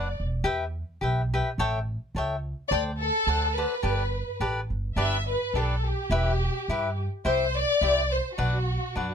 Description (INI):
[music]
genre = mexican folk, mariachi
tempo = 106 BPM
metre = 2/4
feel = swing 55% on 8ths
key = G major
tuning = A4 = 440 Hz
[part]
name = rich studio violin section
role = melody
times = 0.0-0.2, 2.7-9.1 s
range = F#4 to E5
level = -27 LUFS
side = left 2 dB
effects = none
[part]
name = cavaquinho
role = accompaniment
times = 0.0-9.1 s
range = D4 to G5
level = -29 LUFS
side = left 2 dB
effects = none
[part]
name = upright bass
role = bass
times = 0.0-9.1 s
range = E1 to G2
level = -28 LUFS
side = right 1 dB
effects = none
[sound]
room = little or no reverb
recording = close, detailed microphones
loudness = -24 LUFS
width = side -7 dB against mid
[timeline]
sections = 0.0-5.0 A section; 5.0-9.1 A section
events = none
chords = 0.4 Em; 1.6 A7; 2.7 D7sus4; 3.3 D7; 3.8 Gadd9; 5.0 G; 6.1 Em; 7.3 C; 8.4 Bm